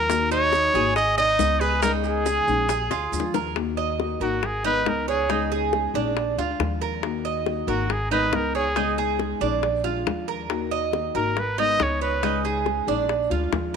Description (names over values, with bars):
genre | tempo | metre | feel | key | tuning
latin, Cuban son and guajira | 138 BPM | 4/4 | straight | Eb minor | A4 = 439 Hz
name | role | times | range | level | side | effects
clear trumpet | melody | 0.0-12.4 s | Gb4 to Eb5 | -24 LUFS | equal | none
nylon-string guitar | accompaniment | 0.0-13.8 s | Db3 to Bb4 | -29 LUFS | left 12 dB | none
Cuban tres | arpeggios | 0.0-13.8 s | D4 to Eb5 | -26 LUFS | right 10 dB | slapback echo
upright bass | bass | 0.0-13.8 s | Ab1 to Eb2 | -30 LUFS | equal | none
bongos | percussion | 0.1-13.8 s | none | -29 LUFS | left 12 dB | none
maracas | percussion | 0.1-3.6 s | none | -38 LUFS | right 15 dB | none
room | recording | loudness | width
moderate plate reverb, RT60 2.9 s | 1960s-style stereo with parts hard left and right | -21 LUFS | side -6 dB against mid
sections
0.0-3.6 A section; 3.6-13.8 B section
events
drum fill 2.9-3.6; trumpet solo 3.6-13.8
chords
0.1 Ebm; 1.0 Abmadd9; 1.8 Dbsus2; 2.7 Bb7; 3.6 Ebm; 4.4 Abmadd9; 5.3 Dbsus2; 6.2 Bb7; 7.0 Ebm; 7.9 Abmadd9; 8.8 Dbsus2; 9.6 Bb7; 10.5 Ebm; 11.4 Abmadd9; 12.2 Dbsus2; 13.1 Bb7